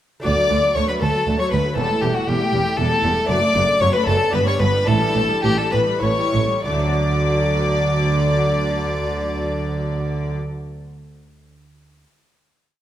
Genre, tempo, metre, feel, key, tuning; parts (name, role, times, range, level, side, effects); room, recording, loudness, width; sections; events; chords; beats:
classical, baroque-style concerto movement with solo episodes; 95-119 BPM; 3/4; straight; D major; A4 = 440 Hz
rich chamber violin section; melody; 0.2-10.3 s; F#5 to D6; -27 LUFS; left 4 dB
rich violin; melody; 0.2-10.3 s; F#4 to D5; -22 LUFS; left 2 dB
warm chamber violin section; second line; 0.2-10.3 s; F#4 to D5; -26 LUFS; left 2 dB
lute; accompaniment; 0.2-10.6 s; D2 to D5; -30 LUFS; equal
rich chamber double bass section; bass; 0.2-10.3 s; E1 to D2; -24 LUFS; right 3 dB
warm chamber cello section; bass; 0.2-10.3 s; D2 to D3; -24 LUFS; right 2 dB
warm chamber viola section; accompaniment; 0.3-10.3 s; F#3 to B3; -27 LUFS; equal
moderate recital hall reverb, RT60 1.7 s; -17 LUFS; side -11 dB against mid
0.2-6.7 ritornello; 6.7-10.4 final chord
slowing down 2.5-6.7
0.2 D; 1.8 A7/E; 3.3 D/F#; 4.3 G; 4.9 A7sus4; 6.0 A7; 6.7 D
| 0.25 0.76 1.27 | 1.77 2.28 2.78 | 3.29 3.81 4.33 | 4.87 5.44 6.03 | 6.65 7.28 7.92 | 8.54 9.18 9.81